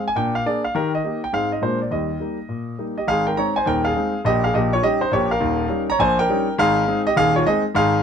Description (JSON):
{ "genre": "jazz, stride piano", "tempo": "206 BPM", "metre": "4/4", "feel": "swing 63% on 8ths", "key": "Eb major, Ab major from 3.1 s", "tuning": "A4 = 442 Hz", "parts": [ { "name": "clear concert grand piano", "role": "solo", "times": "0.0-8.0 s", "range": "Eb1 to Bb5", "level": "-18 LUFS", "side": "equal", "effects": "none" } ], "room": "light reverb", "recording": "close, detailed microphones", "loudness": "-18 LUFS", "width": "side -7 dB against mid", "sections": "0.0-3.1 A section; 3.1-8.0 B section", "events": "none", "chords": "0.2 Bb7; 0.7 Eb; 1.3 Ab; 1.6 Bb7; 1.9 Eb; 3.1 Ab; 4.2 Eb7/Bb; 5.4 Eb13; 6.6 Ab" }